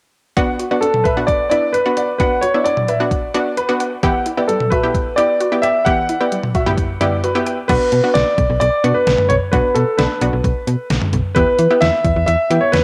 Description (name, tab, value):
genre	synth-pop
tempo	131 BPM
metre	4/4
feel	straight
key	B minor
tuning	A4 = 442 Hz
part	bright baby grand piano	second line	0.4-7.6 s	B4 to F#5	-26 LUFS	equal	cassette tape, analog delay
part	analog pluck	accompaniment	0.4-12.8 s	B3 to A4	-23 LUFS	equal	chorus, cassette tape
part	resonant blip pluck	arpeggios	0.4-7.7 s	E3 to G5	-29 LUFS	equal	none
part	detuned 8-bit digital drum machine	drums	0.4-12.8 s	crash cymbal, hi-hat, kick drum, snare drum, toms	-23 LUFS	equal	overdrive, cassette tape
part	warm concert grand piano	melody	0.8-12.8 s	A4 to F#5	-19 LUFS	equal	cassette tape
part	slap-like FM bass	bass	7.7-12.8 s	B1 to E3	-20 LUFS	equal	none
room	wet spring reverb, RT60 1.4 s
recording	home recording on cassette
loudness	-16 LUFS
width	mono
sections	0.4-7.7 A section; 7.7-12.8 B section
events	none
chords	0.4 Bm; 4.0 Emadd9; 7.7 Bm; 11.4 Em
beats	| 0.37 0.82 1.28 1.74 | 2.20 2.66 3.12 3.57 | 4.03 4.49 4.95 5.41 | 5.86 6.32 6.78 7.24 | 7.70 8.15 8.61 9.07 | 9.53 9.99 10.44 10.90 | 11.36 11.82 12.28 12.73